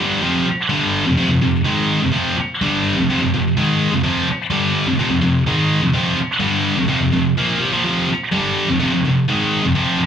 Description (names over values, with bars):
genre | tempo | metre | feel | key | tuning
rock | 126 BPM | 4/4 | straight | F minor | A4 = 440 Hz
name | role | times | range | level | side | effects
scooped high-gain guitar | solo | 0.0-10.0 s | F2 to Bb3 | -15 LUFS | equal | distortion
room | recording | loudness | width
moderate large studio reverb, RT60 0.8 s | band playing live in one room | -15 LUFS | side -8 dB against mid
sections
0.2-10.1 A section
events
none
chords
0.2 Fm